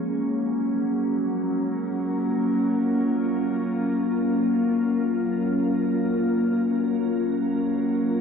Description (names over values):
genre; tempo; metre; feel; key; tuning
ambient; free time; none; none; Gb major; A4 = 440 Hz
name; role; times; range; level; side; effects
glassy FM pad; solo; 0.0-8.2 s; Gb3 to Bb4; -22 LUFS; left 1 dB; ensemble chorus, built-in reverb, tape echo
room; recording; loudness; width
wet lush hall reverb, RT60 3.1 s; dreamy mix soaked in reverb; -22 LUFS; side -6 dB against mid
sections
0.0-8.2 A section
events
none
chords
0.0 Gbmaj7